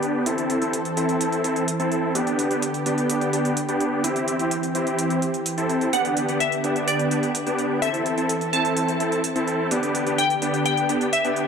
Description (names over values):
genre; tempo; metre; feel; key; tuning
EDM, festival progressive house; 127 BPM; 4/4; straight; G major; A4 = 440 Hz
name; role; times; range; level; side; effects
lush unison pad; sustained chords; 0.0-11.5 s; D3 to A4; -27 LUFS; right 1 dB; chorus
supersaw chords; riff; 0.0-11.5 s; B3 to A4; -23 LUFS; equal; low-pass filter, ping-pong delay
electronic hi-hat; drums; 0.0-11.5 s; none; -31 LUFS; right 3 dB; none
glassy wavetable pluck; melody; 5.9-11.5 s; D5 to A5; -25 LUFS; left 1 dB; chorus, ping-pong delay
room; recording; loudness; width
light reverb; none; -20 LUFS; side -6 dB against mid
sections
0.0-11.5 A section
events
none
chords
0.3 Am; 2.2 G; 4.0 C; 5.9 G; 7.8 Am; 9.7 G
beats
| 0.26 0.73 1.21 1.68 | 2.15 2.62 3.10 3.57 | 4.04 4.51 4.99 5.46 | 5.93 6.40 6.88 7.35 | 7.82 8.29 8.77 9.24 | 9.71 10.18 10.66 11.13